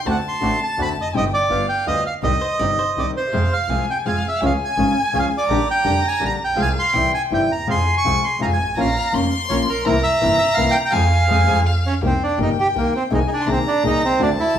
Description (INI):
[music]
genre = tango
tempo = 166 BPM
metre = 3/4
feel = rubato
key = C minor, F harmonic minor from 3.3 s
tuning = A4 = 439 Hz
[part]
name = warm violin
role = second line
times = 0.0-14.6 s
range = E5 to C6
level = -24 LUFS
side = left 4 dB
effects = none
[part]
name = bandoneon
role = stabs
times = 0.0-11.6 s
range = B3 to Bb4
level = -31 LUFS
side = right 4 dB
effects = none
[part]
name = bandoneon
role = melody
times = 0.1-14.6 s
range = Bb3 to Db6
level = -20 LUFS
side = right 3 dB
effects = none
[part]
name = nylon-string guitar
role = accompaniment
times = 0.1-14.6 s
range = C3 to Ab4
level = -23 LUFS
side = left 3 dB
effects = none
[part]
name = clear double bass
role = bass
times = 0.1-14.6 s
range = F1 to F2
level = -23 LUFS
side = right 1 dB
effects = none
[part]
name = archtop guitar, miked and amplified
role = second line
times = 2.4-3.3 s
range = C5 to D5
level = -30 LUFS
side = left 1 dB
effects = none
[sound]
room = moderate large studio reverb, RT60 1.1 s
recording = band playing live in one room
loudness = -16 LUFS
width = side -9 dB against mid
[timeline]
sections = 0.0-3.3 A section; 3.3-12.0 B section; 12.0-14.6 C section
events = band accent 10.9-12.0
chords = 0.1 D7; 1.1 Cm/G; 1.5 G7; 2.2 Cm; 3.3 Fm; 4.4 Db; 5.5 Bb6; 6.6 Fm/C; 6.9 C; 7.7 Fm; 8.8 Bbm; 9.9 C7; 10.9 Fm; 12.0 Cm7; 13.1 Abadd9/C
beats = | 0.06 0.42 0.78 | 1.14 1.50 1.86 | 2.23 2.59 2.96 | 3.33 3.69 4.05 | 4.42 4.78 5.14 | 5.50 5.85 6.21 | 6.58 6.94 7.31 | 7.68 8.05 8.41 | 8.77 9.14 9.50 | 9.86 10.22 10.57 | 10.93 11.29 11.65 | 12.02 12.39 12.75 | 13.11 13.47 13.84 | 14.20 14.55